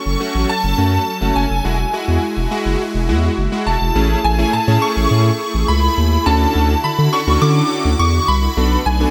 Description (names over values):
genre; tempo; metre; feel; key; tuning
pop; 104 BPM; 4/4; straight; A major; A4 = 445 Hz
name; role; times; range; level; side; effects
shimmering bell with halo; melody; 0.0-9.1 s; G#5 to D6; -22 LUFS; equal; ensemble chorus, tape echo
supersaw pad; sustained chords; 0.0-9.1 s; D3 to A4; -26 LUFS; equal; none
saturated sub bass; bass; 0.1-9.1 s; E1 to D3; -19 LUFS; equal; none
big bright polysynth; accompaniment; 0.2-9.1 s; G#3 to A4; -24 LUFS; equal; chorus
room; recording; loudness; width
digital ambience; none; -16 LUFS; mono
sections
0.0-4.0 A section; 4.0-9.1 B section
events
none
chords
0.0 F#m; 1.6 Eadd9; 4.0 Amaj7; 6.3 Dmaj7; 8.6 Bm7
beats
0.49 1.07 | 1.65 2.22 2.80 3.38 | 3.96 4.53 5.11 5.69 | 6.26 6.84 7.42 7.99 | 8.57